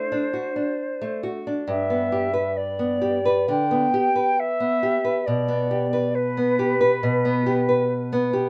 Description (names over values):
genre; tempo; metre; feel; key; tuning
romantic duo for flute and classical guitar; 68 BPM; 4/4; rubato; G major; A4 = 439 Hz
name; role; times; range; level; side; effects
silver concert flute; melody; 0.0-8.3 s; B4 to G5; -26 LUFS; equal; none
nylon-string guitar; accompaniment; 0.0-8.5 s; G2 to B4; -25 LUFS; equal; none
room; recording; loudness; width
moderate studio ambience, RT60 0.5 s; none; -23 LUFS; mono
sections
0.0-8.5 A section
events
none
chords
0.0 D7/A; 1.7 G; 5.3 G/B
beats
0.81 | 1.69 2.57 3.50 4.40 | 5.28 6.16 7.04 7.90